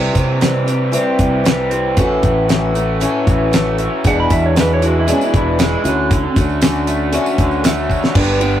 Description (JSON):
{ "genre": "folk rock and heartland rock", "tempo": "116 BPM", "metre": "4/4", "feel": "straight", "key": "unclear", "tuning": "A4 = 440 Hz", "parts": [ { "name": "clear upright piano", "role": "accompaniment", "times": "0.0-8.6 s", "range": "D4 to A5", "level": "-28 LUFS", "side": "right 2 dB", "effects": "none" }, { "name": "picked old ladder-braced acoustic guitar", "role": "accompaniment", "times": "0.0-8.6 s", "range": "E2 to G4", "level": "-18 LUFS", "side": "left 2 dB", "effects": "none" }, { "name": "raw garage guitar", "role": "riff", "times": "0.0-8.6 s", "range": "E2 to G4", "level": "-20 LUFS", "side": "right 2 dB", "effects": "overdrive" }, { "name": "fingered electric bass", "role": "bass", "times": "0.0-8.6 s", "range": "E1 to C3", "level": "-20 LUFS", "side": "equal", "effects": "none" }, { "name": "damped 70s drum kit", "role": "drums", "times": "0.2-8.5 s", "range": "crash cymbal, hi-hat, kick drum, ride cymbal, snare drum", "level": "-16 LUFS", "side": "equal", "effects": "none" }, { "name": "clean lap steel guitar", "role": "second line", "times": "4.1-6.4 s", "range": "C#4 to B5", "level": "-20 LUFS", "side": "right 3 dB", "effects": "none" }, { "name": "tambourine", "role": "percussion", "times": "4.3-8.1 s", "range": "none", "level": "-36 LUFS", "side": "right 6 dB", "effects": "none" } ], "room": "moderate booth ambience, RT60 0.2 s", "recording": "rough rehearsal-room recording, warm saturation", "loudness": "-13 LUFS", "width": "side -11 dB against mid", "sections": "0.0-8.2 A section", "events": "upright piano fill 3.3-4.1; drum fill 7.9", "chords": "0.0 C; 2.0 A6; 4.1 E7; 5.9 Dmaj7" }